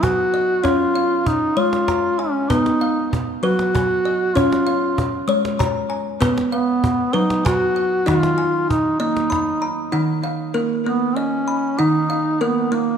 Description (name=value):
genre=world meditative, meditative tuned percussion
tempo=65 BPM (dotted quarters)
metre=6/8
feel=straight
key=Eb minor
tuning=A4 = 440 Hz
part: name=mellow duduk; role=melody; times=0.0-13.0 s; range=Bb3 to F#4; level=-20 LUFS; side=equal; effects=diffuse ambient delay
part: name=kalimba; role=arpeggios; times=0.0-13.0 s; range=Eb3 to Cb6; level=-20 LUFS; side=equal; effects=diffuse ambient delay
part: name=cajon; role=percussion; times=0.0-9.9 s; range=none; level=-24 LUFS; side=right 1 dB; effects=none
room=moderate scoring stage reverb, RT60 1.6 s, small room reverb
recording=none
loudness=-17 LUFS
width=side -7 dB against mid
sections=0.0-9.9 A section; 9.9-13.0 B section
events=none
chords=0.0 B; 0.6 Db; 2.5 B; 4.4 Db; 6.2 B5; 8.1 Ebm